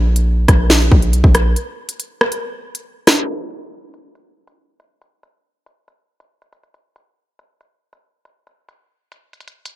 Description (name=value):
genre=hip hop, drill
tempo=139 BPM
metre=4/4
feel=half-time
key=unclear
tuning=A4 = 441 Hz
part: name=hard-hitting 808-style bass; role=bass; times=0.0-1.6 s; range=Bb1 to Cb2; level=-14 LUFS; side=equal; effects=none
part: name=drill drum kit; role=drums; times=0.2-9.8 s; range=hi-hat, kick drum, rim click, snare drum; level=-13 LUFS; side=equal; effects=none
room=little or no reverb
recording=low-pass filter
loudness=-13 LUFS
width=side -16 dB against mid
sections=0.0-3.3 A section; 3.3-9.8 B section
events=break 1.6-3.3; filter sweep 3.3-9.8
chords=none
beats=0.27 0.70 1.13 | 1.56 2.00 2.43 2.86 | 3.29 3.72 4.15 4.58 | 5.02 5.45 5.88 6.31 | 6.74 7.17 7.61 8.04 | 8.47 8.90 9.33